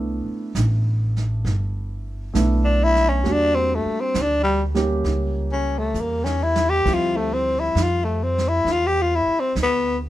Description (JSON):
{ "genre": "jazz ballad", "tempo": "67 BPM", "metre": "4/4", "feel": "swing 68% on 8ths", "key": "unclear", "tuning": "A4 = 440 Hz", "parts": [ { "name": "warm concert grand piano", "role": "accompaniment", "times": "0.0-10.1 s", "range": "F3 to G4", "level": "-27 LUFS", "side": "right 2 dB", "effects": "none" }, { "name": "upright bass", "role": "bass", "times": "0.0-10.1 s", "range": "G1 to F2", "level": "-23 LUFS", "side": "equal", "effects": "none" }, { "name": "vintage brush drum kit", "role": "drums", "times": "0.6-10.1 s", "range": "brushed snare drum, crash cymbal, hi-hat, kick drum, snare drum", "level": "-30 LUFS", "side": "right 5 dB", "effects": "none" }, { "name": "growling tenor saxophone", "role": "melody", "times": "2.6-10.0 s", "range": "G3 to G4", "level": "-20 LUFS", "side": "left 2 dB", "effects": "none" } ], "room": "little or no reverb", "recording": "none", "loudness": "-18 LUFS", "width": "side -14 dB against mid", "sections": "0.0-10.1 A section", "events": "tenor saxophone solo 0.0-10.1; drum fill 6.0-6.9", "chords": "0.0 Cmaj13 (rootless); 3.3 Em7b5; 5.1 C#dim7; 6.9 Dm11" }